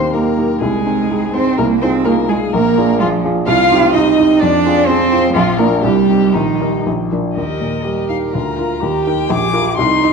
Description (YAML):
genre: quick classical-period movement for piano quartet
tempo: 115-131 BPM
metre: 2/4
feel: rubato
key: Eb major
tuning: A4 = 440 Hz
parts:
  - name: warm violin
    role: melody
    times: 0.0-10.1 s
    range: Eb4 to D6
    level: -21 LUFS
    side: left 8 dB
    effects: none
  - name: rich violin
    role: second line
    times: 0.0-10.1 s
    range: Eb4 to F5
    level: -22 LUFS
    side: left 3 dB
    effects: none
  - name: warm baby grand piano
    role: accompaniment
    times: 0.0-10.1 s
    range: Bb1 to Eb5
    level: -17 LUFS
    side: left 2 dB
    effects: none
  - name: warm cello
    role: second line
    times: 0.1-10.1 s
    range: Eb3 to Bb4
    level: -16 LUFS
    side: right 7 dB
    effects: none
room: wet recital hall reverb, RT60 1.7 s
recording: dark, warm production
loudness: -12 LUFS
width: side -5 dB against mid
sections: 0.0-7.4 A section; 7.4-10.1 B section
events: none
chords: 0.0 Eb; 0.6 Ab/C; 1.6 Fm7/C; 2.5 Bb7; 3.5 Cm; 4.4 Fm; 5.3 Bb; 5.8 Cm; 6.3 Eb/Bb; 6.9 Bb; 7.4 Eb; 8.3 Bb/D; 8.8 Eb; 9.3 Bb7